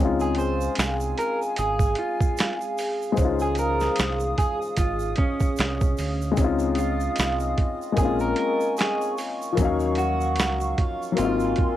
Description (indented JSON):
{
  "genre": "lo-fi hip hop",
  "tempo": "75 BPM",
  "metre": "4/4",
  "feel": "swing 57% on 16ths",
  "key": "Db major",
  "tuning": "A4 = 440 Hz",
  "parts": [
    { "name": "dark upright piano", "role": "accompaniment", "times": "0.0-11.8 s", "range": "F3 to F5", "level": "-27 LUFS", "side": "left 6 dB", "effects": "cassette tape" },
    { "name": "dark analog pad", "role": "sustained chords", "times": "0.0-11.8 s", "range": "Gb3 to Eb6", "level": "-30 LUFS", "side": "right 1 dB", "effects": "chorus, cassette tape" },
    { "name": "deep dub fingered electric bass", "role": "bass", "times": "0.0-11.5 s", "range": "Ab1 to Eb2", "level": "-28 LUFS", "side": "right 1 dB", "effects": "none" },
    { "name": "electric guitar through a small old amp", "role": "melody", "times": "0.2-11.8 s", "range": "Db4 to C5", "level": "-28 LUFS", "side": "right 2 dB", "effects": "cassette tape" },
    { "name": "tube shaker", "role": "percussion", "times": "0.2-11.6 s", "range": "none", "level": "-45 LUFS", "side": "right 10 dB", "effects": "none" },
    { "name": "boom bap sampler-style drum kit", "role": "drums", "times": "0.3-11.8 s", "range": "finger snaps, hi-hat, kick drum, snare drum", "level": "-24 LUFS", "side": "right 1 dB", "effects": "none" }
  ],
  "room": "moderate booth ambience, RT60 0.2 s",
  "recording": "home recording on cassette",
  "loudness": "-21 LUFS",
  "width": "side -12 dB against mid",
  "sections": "0.0-6.4 A section; 6.4-11.8 B section",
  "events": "none",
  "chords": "0.0 Dbmaj7; 6.4 Dbmaj9; 8.0 Bbm9; 9.6 Ebm9; 11.2 Ab13"
}